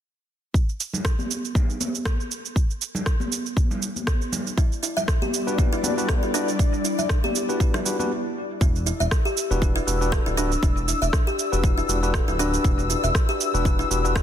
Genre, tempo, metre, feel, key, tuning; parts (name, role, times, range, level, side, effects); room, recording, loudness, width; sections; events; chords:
afro house; 119 BPM; 4/4; swing 56% on 16ths; E minor; A4 = 439 Hz
electronic kick drum; drums; 0.5-14.2 s; -22 LUFS; equal
electronic shaker and rim click; drums; 0.6-14.2 s; -29 LUFS; right 4 dB; soft clipping on snare
congas; percussion; 0.9-8.1 s; -30 LUFS; equal
ethereal airy pad; sustained chords; 5.3-14.2 s; G3 to E6; -29 LUFS; left 3 dB; ensemble chorus, built-in reverb, sidechain pumping
kalimba; arpeggios; 4.6-14.2 s; D4 to E5; -28 LUFS; equal; sidechain pumping, dub echo
tine electric piano; stabs; 5.5-14.2 s; D4 to B4; -29 LUFS; left 2 dB; sidechain pumping, dub echo
smooth gliding synth bass; bass; 8.6-14.2 s; D1 to E1; -25 LUFS; equal; sidechain pumping
digital ambience; dense, heavily limited modern master; -21 LUFS; side -10 dB against mid
0.5-8.6 A section; 8.6-14.2 B section
stop 8.1-8.6
0.5 Em7